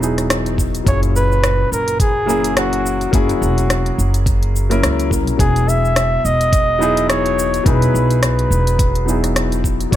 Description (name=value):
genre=sunset chillout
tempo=106 BPM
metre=4/4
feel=swing 57% on 16ths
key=E lydian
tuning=A4 = 441 Hz
part: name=warm grand piano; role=accompaniment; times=0.0-10.0 s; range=A#2 to D#5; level=-20 LUFS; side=moving between left 6 dB and right 3 dB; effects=auto-pan, digital delay
part: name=upright bass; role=bass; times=0.0-10.0 s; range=E1 to C#2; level=-18 LUFS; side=equal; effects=none
part: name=deep house drum kit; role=drums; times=0.0-10.0 s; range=hi-hat, rim click, shaker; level=-22 LUFS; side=left 1 dB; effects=studio ambience
part: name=electronic kick drum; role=drums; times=0.6-10.0 s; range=none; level=-17 LUFS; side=equal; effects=studio ambience
part: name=mellow flugelhorn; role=melody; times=0.9-10.0 s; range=F#4 to E5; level=-19 LUFS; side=equal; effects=digital delay
room=small room ambience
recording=none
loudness=-14 LUFS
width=side -12 dB against mid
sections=0.0-10.0 A section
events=none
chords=0.0 Emaj7; 0.9 F#7; 5.4 Emaj7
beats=0.30 | 0.87 1.44 2.00 2.57 | 3.13 3.70 4.26 4.83 | 5.40 5.96 6.53 7.09 | 7.66 8.23 8.79 9.36 | 9.93